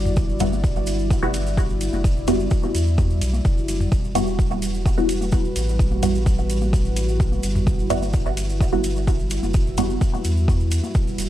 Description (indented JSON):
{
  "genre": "dub techno",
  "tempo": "128 BPM",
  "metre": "4/4",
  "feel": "straight",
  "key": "E minor",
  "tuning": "A4 = 440 Hz",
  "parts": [
    { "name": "dark analog pad", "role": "sustained chords", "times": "0.0-11.3 s", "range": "G3 to D5", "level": "-28 LUFS", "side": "equal", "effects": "chorus, sidechain pumping" },
    { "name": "warm sub bass", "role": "bass", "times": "0.0-11.3 s", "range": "E1 to E2", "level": "-24 LUFS", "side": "equal", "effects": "sidechain pumping" },
    { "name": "electronic toms and congas", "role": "percussion", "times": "0.1-10.9 s", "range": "none", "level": "-30 LUFS", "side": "left 1 dB", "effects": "sidechain pumping on toms, sidechain pumping on perc, dub echo" },
    { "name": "tube shaker", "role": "percussion", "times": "0.1-11.3 s", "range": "none", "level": "-36 LUFS", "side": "right 2 dB", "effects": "none" },
    { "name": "electronic kick drum", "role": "drums", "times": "0.2-11.0 s", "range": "none", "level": "-20 LUFS", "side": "equal", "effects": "overdrive" },
    { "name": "filtered dub chord stab", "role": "stabs", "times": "0.4-9.9 s", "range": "G3 to F#4", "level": "-25 LUFS", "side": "right 1 dB", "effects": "phaser, sidechain pumping, dub echo" },
    { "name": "electronic hi-hat", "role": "drums", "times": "0.4-11.3 s", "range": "none", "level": "-33 LUFS", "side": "left 1 dB", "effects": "overdrive" }
  ],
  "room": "light reverb, digital ambience",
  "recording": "dark, warm production",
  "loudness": "-18 LUFS",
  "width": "side -13 dB against mid",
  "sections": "0.0-11.3 A section",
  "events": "filter sweep on synth stab 0.0-11.3",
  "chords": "0.0 Emadd9"
}